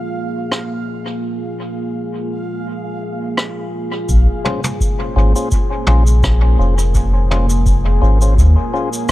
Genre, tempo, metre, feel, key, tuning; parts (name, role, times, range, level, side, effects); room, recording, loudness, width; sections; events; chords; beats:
ambient dub; 84 BPM; 4/4; swing 55% on 16ths; Bb minor; A4 = 441 Hz
deep dark ambient pad; sustained chords; 0.0-9.1 s; Bb3 to Db5; -23 LUFS; equal; chorus, built-in reverb
bubbling stepped-filter texture; texture; 0.0-4.1 s; F5; -33 LUFS; right 3 dB; chorus, built-in reverb
jazz brush drum kit; drums; 0.5-9.1 s; rim click, shaker, toms; -23 LUFS; equal; dub echo
soft dub sub bass; bass; 4.1-9.1 s; F1 to Eb2; -12 LUFS; equal
electronic kick drum; drums; 4.1-9.1 s; -18 LUFS; equal
percussive tonewheel organ; stabs; 4.4-8.9 s; Db4 to C5; -23 LUFS; left 3 dB; chorus vibrato, stopped rotary speaker, vintage 12-bit sampler grit, dub echo
small room ambience; echo-heavy mix; -14 LUFS; side -16 dB against mid
0.0-4.1 A section; 4.1-9.1 B section
filter sweep on ambient pad 0.0-4.1
0.0 Bbm7
0.52 | 1.24 1.95 2.67 3.38 | 4.09 4.81 5.52 6.24 | 6.95 7.67 8.38 9.09